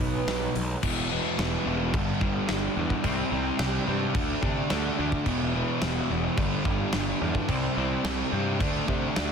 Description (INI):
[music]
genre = quiet-loud alternative rock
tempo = 108 BPM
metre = 4/4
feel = straight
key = E minor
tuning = A4 = 440 Hz
[part]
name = picked old ladder-braced acoustic guitar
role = arpeggios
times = 0.0-0.8 s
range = B2 to D#4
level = -33 LUFS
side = right 7 dB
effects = none
[part]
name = fuzz guitar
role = riff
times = 0.0-9.3 s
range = E2 to D4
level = -28 LUFS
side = equal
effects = distortion
[part]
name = fuzz picked electric bass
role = bass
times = 0.0-9.3 s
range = E1 to C3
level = -31 LUFS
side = equal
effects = overdrive
[part]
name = big rock drum kit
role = drums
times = 0.0-9.3 s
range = crash cymbal, hi-hat, kick drum, snare drum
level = -30 LUFS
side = equal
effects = soft clipping on kick
[sound]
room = studio reverb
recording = dense, heavily limited modern master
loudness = -24 LUFS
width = side -6 dB against mid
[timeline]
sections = 0.8-9.3 A section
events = none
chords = 0.0 B; 0.8 E5; 1.9 G5; 3.0 C5; 4.2 D5; 5.3 E5; 6.4 G5; 7.5 C5; 8.6 D5